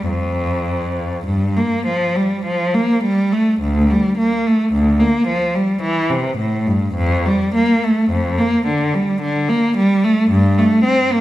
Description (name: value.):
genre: classical, baroque-style suite movement for unaccompanied cello.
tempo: 53 BPM.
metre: 3/4.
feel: uneven beats, rubato.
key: F major, D minor from 3.6 s.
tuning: A4 = 440 Hz.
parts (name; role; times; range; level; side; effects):
rich cello; solo; 0.0-11.2 s; D2 to C4; -14 LUFS; equal; none.
room: wet recital hall reverb, RT60 1.3 s.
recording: minimal, uncompressed stereo recording.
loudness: -14 LUFS.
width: side -15 dB against mid.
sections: 0.0-3.6 A section; 3.6-11.2 A section.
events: none.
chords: none.